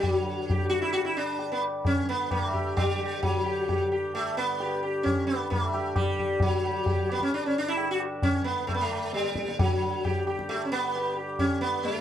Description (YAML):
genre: indian classical, Hindustani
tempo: 132 BPM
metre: 7/4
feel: straight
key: G raga yaman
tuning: A4 = 438 Hz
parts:
  - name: sitar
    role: melody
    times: 0.0-12.0 s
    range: F#3 to G4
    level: -27 LUFS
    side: equal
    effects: none
  - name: pedal harmonium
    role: drone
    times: 0.0-12.0 s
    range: G2 to D3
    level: -38 LUFS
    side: equal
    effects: none
  - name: tabla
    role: percussion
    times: 0.0-12.0 s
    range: none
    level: -30 LUFS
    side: equal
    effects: none
room: moderate studio reverb, RT60 0.5 s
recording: dark, warm production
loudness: -25 LUFS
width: side -10 dB against mid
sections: 0.0-12.0 A section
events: none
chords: none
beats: | 0.04 0.50 0.95 1.41 1.87 2.32 2.78 | 3.23 3.69 4.14 4.60 5.05 5.51 5.96 | 6.42 6.87 7.32 7.78 8.23 8.68 9.14 | 9.59 10.04 10.49 10.95 11.40 11.85